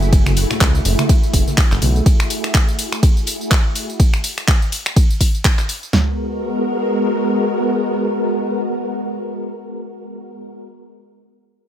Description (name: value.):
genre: deep house.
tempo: 124 BPM.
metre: 4/4.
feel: swing 57% on 16ths.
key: unclear.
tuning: A4 = 440 Hz.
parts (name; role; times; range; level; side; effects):
soft string machine; sustained chords; 0.0-10.6 s; G#3 to A#4; -21 LUFS; equal; ensemble chorus, sidechain pumping.
round analog bass; bass; 0.0-2.0 s; F#1 to C#2; -17 LUFS; equal; sidechain pumping.
deep house drum kit; drums; 0.0-5.9 s; finger snaps, handclaps, hi-hat, ride cymbal, tambourine; -21 LUFS; equal; overdrive.
compact cocktail drum kit; drums; 0.1-3.9 s; hi-hat, snare drum; -32 LUFS; left 3 dB; none.
deep house drum kit; drums; 0.1-6.1 s; kick drum, snare drum, toms; -14 LUFS; equal; overdrive.
congas; percussion; 0.3-1.9 s; none; -25 LUFS; right 2 dB; none.
room: digital ambience.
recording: none.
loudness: -15 LUFS.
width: side -10 dB against mid.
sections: 0.0-5.9 A section; 5.9-9.8 B section.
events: drop 0.0-5.9.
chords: 0.0 F#m9; 5.9 G#m9.